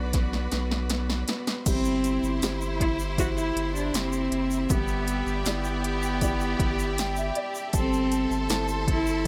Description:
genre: pop ballad.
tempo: 79 BPM.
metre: 4/4.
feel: straight.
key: unclear.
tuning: A4 = 440 Hz.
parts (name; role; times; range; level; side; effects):
dark upright piano; accompaniment; 0.0-9.3 s; G3 to G5; -37 LUFS; equal; none.
clear studio string section; sustained chords; 0.0-9.3 s; F#4 to C6; -40 LUFS; equal; none.
saturated sub bass; bass; 0.0-9.3 s; F#1 to B1; -33 LUFS; equal; none.
deep house drum kit; drums; 0.1-9.1 s; crash cymbal, hi-hat, kick drum, snare drum; -30 LUFS; equal; none.
warm cello; melody; 1.7-9.3 s; B3 to F#4; -31 LUFS; equal; none.
warm studio violin section; second line; 1.7-9.3 s; E4 to A4; -36 LUFS; equal; tape echo.
egg shaker; percussion; 1.7-9.2 s; none; -42 LUFS; equal; none.
room: little or no reverb.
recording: none.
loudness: -27 LUFS.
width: mono.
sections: 0.0-1.7 A section; 1.7-9.3 B section.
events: drum fill 0.1-1.7; upright piano fill 6.6-7.7.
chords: 0.0 Bm; 1.7 C/G; 4.7 Em7/G; 7.7 Am/G.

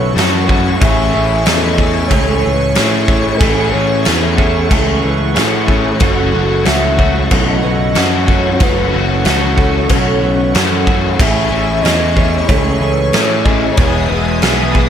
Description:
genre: rock, shoegaze and dream pop.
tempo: 92 BPM.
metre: 4/4.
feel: straight.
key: A lydian.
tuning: A4 = 439 Hz.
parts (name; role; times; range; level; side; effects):
hollow clarinet-like synth lead; melody; 0.0-14.7 s; A4 to E5; -20 LUFS; equal; chorus, tape echo.
chorused pulse-width pad; sustained chords; 0.0-14.9 s; E4 to D#6; -23 LUFS; right 1 dB; phaser.
fingerpicked twelve-string acoustic guitar; arpeggios; 0.0-14.9 s; A3 to G#5; -25 LUFS; right 3 dB; analog chorus, tape echo.
direct-recorded clean electric guitar; riff; 0.0-14.9 s; E2 to G#4; -19 LUFS; right 11 dB; reverse reverb.
overdriven semi-hollow guitar; riff; 0.0-14.9 s; A2 to F#4; -18 LUFS; left 11 dB; ensemble chorus.
modern bright picked electric bass; bass; 0.0-14.9 s; E1 to A2; -17 LUFS; equal; none.
huge arena drum kit; drums; 0.2-14.9 s; crash cymbal, kick drum, snare drum; -16 LUFS; equal; none.
room: light reverb, studio ambience.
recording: none.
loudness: -11 LUFS.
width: side -9 dB against mid.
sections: 0.0-14.9 A section.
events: none.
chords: 0.0 F#m7; 0.8 Amaj7; 6.0 F#m7; 11.2 Amaj7; 13.8 Emaj7.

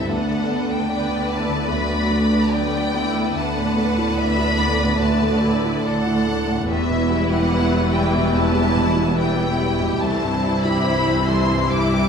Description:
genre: cinematic, emotional film score for orchestra.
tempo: 72 BPM.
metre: 4/4.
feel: rubato.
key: unclear.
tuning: A4 = 439 Hz.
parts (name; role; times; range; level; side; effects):
warm symphonic violin section; melody; 0.0-12.1 s; E5 to D6; -26 LUFS; left 2 dB; none.
clear symphonic violin section; second line; 0.0-12.1 s; G3 to F#5; -27 LUFS; equal; none.
warm grand piano; accompaniment; 0.0-12.1 s; C2 to D5; -22 LUFS; equal; none.
warm symphonic viola section; accompaniment; 0.0-12.1 s; E3 to F#4; -26 LUFS; left 1 dB; none.
dark symphonic cello section; bass; 0.0-12.1 s; C2 to D3; -26 LUFS; right 1 dB; none.
rich symphonic double bass section; bass; 0.0-12.1 s; E1 to D2; -24 LUFS; right 1 dB; none.
room: wet stone room reverb, RT60 1.4 s.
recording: minimal, uncompressed stereo recording.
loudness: -17 LUFS.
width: side -6 dB against mid.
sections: 0.0-12.1 A section.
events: none.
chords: 0.1 Bm/D; 6.7 Em; 10.0 C6.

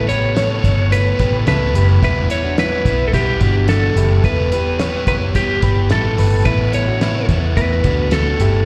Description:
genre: jangly indie pop.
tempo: 108 BPM.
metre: 4/4.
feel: straight.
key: A mixolydian.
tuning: A4 = 441 Hz.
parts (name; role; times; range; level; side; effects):
lightly driven lead guitar; melody; 0.0-8.7 s; G4 to C#5; -22 LUFS; equal; slapback echo.
crunchy overdriven guitar; accompaniment; 0.0-8.7 s; E3 to B4; -26 LUFS; equal; none.
direct-recorded clean electric guitar; arpeggios; 0.0-8.7 s; B3 to C#5; -28 LUFS; equal; analog chorus.
vintage muted picked electric bass; bass; 0.0-8.6 s; E1 to E2; -19 LUFS; equal; none.
cloth-damped thuddy drum kit; drums; 0.1-8.5 s; hi-hat, kick drum, snare drum; -22 LUFS; equal; none.
room: little or no reverb.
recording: live gig heard through the venue's PA, recital hall reverb.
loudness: -16 LUFS.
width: mono.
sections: 0.0-8.7 A section.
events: none.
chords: 0.0 Asus2; 2.0 Em; 6.5 Asus2.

